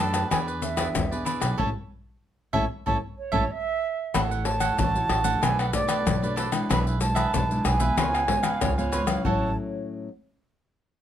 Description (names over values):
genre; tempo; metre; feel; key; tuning
samba and choro; 94 BPM; 4/4; straight; A major; A4 = 440 Hz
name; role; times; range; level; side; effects
baroque flute; melody; 0.0-9.5 s; D5 to B5; -28 LUFS; right 3 dB; none
cavaquinho; accompaniment; 0.0-9.5 s; D4 to F#5; -31 LUFS; right 5 dB; none
nylon-string guitar; accompaniment; 0.0-10.1 s; G#2 to C#5; -31 LUFS; left 3 dB; none
upright bass; bass; 0.0-9.5 s; A1 to B2; -29 LUFS; right 1 dB; none
maracas, pandeiro, tamborim and surdo; percussion; 0.1-9.4 s; none; -28 LUFS; left 4 dB; none
wooden flute; second line; 3.2-4.1, 8.3-9.5 s; C#5 to E#5; -30 LUFS; right 7 dB; none
room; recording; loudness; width
light reverb; close, detailed microphones; -23 LUFS; side -10 dB against mid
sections
0.0-4.1 A section; 4.1-9.2 B section; 9.2-11.0 C section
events
band accent 1.6-4.1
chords
0.3 E7; 1.6 A; 4.1 A6; 5.4 Bm7; 6.7 E7/B; 8.0 C#7; 9.2 A6